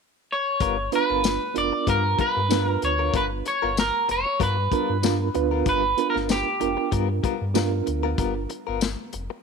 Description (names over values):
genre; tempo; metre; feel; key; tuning
straight-eighth soul blues; 95 BPM; 4/4; swing 54% on 16ths; G mixolydian; A4 = 441 Hz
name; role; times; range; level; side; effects
electric guitar at the edge of break-up; melody; 0.3-6.9 s; G4 to D5; -24 LUFS; right 1 dB; lush chorus
direct-recorded clean electric guitar; stabs; 0.6-9.3 s; G3 to A#4; -30 LUFS; left 13 dB; tremolo
sub bass with octave; bass; 0.6-9.3 s; F1 to G2; -28 LUFS; left 1 dB; none
warm soul drum kit; drums; 0.6-9.3 s; hi-hat, kick drum, snare drum, tambourine; -27 LUFS; left 5 dB; none
reed electric piano; accompaniment; 0.9-8.5 s; B3 to B4; -26 LUFS; right 11 dB; overdrive, fast tremolo
room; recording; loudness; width
light reverb, studio ambience; 1960s-style stereo with parts hard left and right; -21 LUFS; side -5 dB against mid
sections
0.6-9.4 A section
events
none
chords
0.0 N.C.; 0.6 G7#9